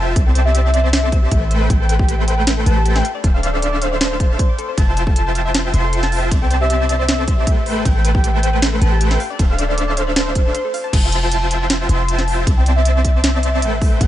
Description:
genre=future bass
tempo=156 BPM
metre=4/4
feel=half-time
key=unclear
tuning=A4 = 435 Hz
part: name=warm velvety synth lead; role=melody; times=0.0-14.1 s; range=C5 to C6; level=-23 LUFS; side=equal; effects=chorus, sidechain pumping, tape echo
part: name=soft round pluck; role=arpeggios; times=0.0-10.9 s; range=G4 to D6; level=-30 LUFS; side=left 6 dB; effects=chorus, sidechain pumping, digital delay
part: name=dense compressed supersaw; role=riff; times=0.0-14.1 s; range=A3 to A5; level=-22 LUFS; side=equal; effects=vintage 12-bit sampler grit, sidechain pumping
part: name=warm 808-style bass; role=bass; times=0.0-14.1 s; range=D1 to C2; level=-18 LUFS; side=equal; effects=sidechain pumping
part: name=electronic kick drum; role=drums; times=0.2-14.1 s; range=none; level=-16 LUFS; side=equal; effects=none
part: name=trap drum kit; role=drums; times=0.2-14.1 s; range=crash cymbal, hi-hat, ride cymbal, snare drum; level=-22 LUFS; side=right 1 dB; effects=none
room=digital ambience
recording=nothing above 10.4 kHz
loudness=-14 LUFS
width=side -13 dB against mid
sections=0.0-10.9 A section; 10.9-14.1 A section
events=drop 0.0-10.9, 10.9-14.1; break 10.5-10.9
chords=0.2 C69; 1.5 Am9; 3.0 Dm7; 4.8 Fmaj7; 6.3 C69; 7.7 Am9; 9.2 Dm7; 10.9 Fmaj7; 12.5 C69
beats=| 0.16 0.55 0.93 1.32 | 1.70 2.09 2.47 2.85 | 3.24 3.62 4.01 4.39 | 4.78 5.16 5.55 5.93 | 6.32 6.70 7.09 7.47 | 7.86 8.24 8.62 9.01 | 9.39 9.78 10.16 10.55 | 10.93 11.32 11.70 12.09 | 12.47 12.86 13.24 13.62 | 14.01

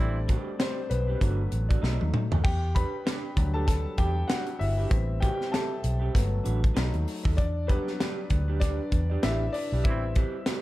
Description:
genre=lush 1970s-style soul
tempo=97 BPM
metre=4/4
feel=swing 58% on 16ths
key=E minor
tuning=A4 = 441 Hz
part: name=warm grand piano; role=accompaniment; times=0.0-10.6 s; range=F#3 to B5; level=-33 LUFS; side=left 3 dB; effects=none
part: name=bright trombone section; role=stabs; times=0.0-0.2, 9.9-10.1 s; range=E3 to E4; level=-38 LUFS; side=right 4 dB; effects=none
part: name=vintage muted fingered electric bass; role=bass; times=0.0-10.2 s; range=G1 to E2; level=-27 LUFS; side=equal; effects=none
part: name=electric guitar through a small old amp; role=riff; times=0.3-10.6 s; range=C4 to D5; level=-37 LUFS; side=right 8 dB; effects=spring reverb
part: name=tight funk drum kit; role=drums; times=0.3-10.6 s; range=hi-hat, kick drum, snare drum, splash cymbal, toms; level=-27 LUFS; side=equal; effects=none
room=studio reverb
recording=none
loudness=-24 LUFS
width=side -17 dB against mid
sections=0.0-10.6 A section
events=band accent 0.0-2.4, 9.8-10.6; grand piano solo 0.0-10.6; drum fill 1.8-2.4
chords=0.0 Am9; 1.2 Gmaj7; 1.8 B7; 2.4 Em7; 4.9 Am9; 6.1 Gmaj7; 6.8 B7; 7.4 Em7; 9.8 Am9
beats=0.60 1.21 1.83 | 2.45 3.06 3.68 4.30 | 4.91 5.53 6.15 6.76 | 7.38 8.00 8.62 9.23 | 9.85 10.47

